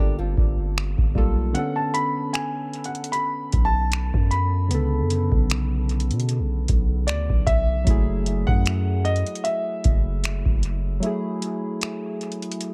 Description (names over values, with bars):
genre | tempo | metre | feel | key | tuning
contemporary R&B | 76 BPM | 4/4 | swing 54% on 16ths | unclear | A4 = 440 Hz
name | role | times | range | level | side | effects
soft electric-piano-like synth keys | accompaniment | 0.0-12.7 s | C#3 to A4 | -31 LUFS | equal | chorus, dub echo
nylon-string guitar | arpeggios | 0.0-1.3 s | C4 to G4 | -36 LUFS | equal | dub echo
long sustained 808-style bass | bass | 0.0-11.0 s | F#1 to B2 | -26 LUFS | equal | none
booming analog drum machine | drums | 0.4-12.7 s | finger snaps, hi-hat, kick drum | -24 LUFS | equal | none
warm concert grand piano | melody | 1.5-12.7 s | D5 to B5 | -30 LUFS | equal | dub echo
room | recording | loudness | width
light reverb, digital ambience | echo-heavy mix | -23 LUFS | mono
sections
0.0-12.7 A section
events
break 0.0-1.6, 1.6-3.1, 11.0-12.7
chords
0.0 Gm9; 1.6 Bm9; 7.9 F#m9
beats
0.76 | 1.55 2.34 3.13 3.92 | 4.71 5.50 6.29 7.08 | 7.87 8.66 9.45 10.23 | 11.03 11.81 12.60